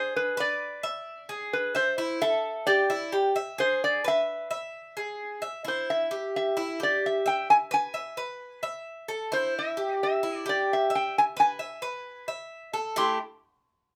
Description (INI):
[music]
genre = latin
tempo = 131 BPM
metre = 4/4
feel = straight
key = unclear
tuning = A4 = 440 Hz
[part]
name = metal-body resonator slide guitar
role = melody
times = 0.0-13.2 s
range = B4 to C6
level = -28 LUFS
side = equal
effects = none
[part]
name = Cuban tres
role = arpeggios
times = 0.0-13.2 s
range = A3 to E5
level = -33 LUFS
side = equal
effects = none
[sound]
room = moderate studio reverb, RT60 0.5 s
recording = none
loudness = -28 LUFS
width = mono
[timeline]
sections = 0.0-5.7 A section; 5.7-13.0 B section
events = none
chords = 0.2 E7; 2.0 A5; 3.8 E; 5.7 Em; 7.5 E; 9.3 Em; 11.1 E; 13.0 A5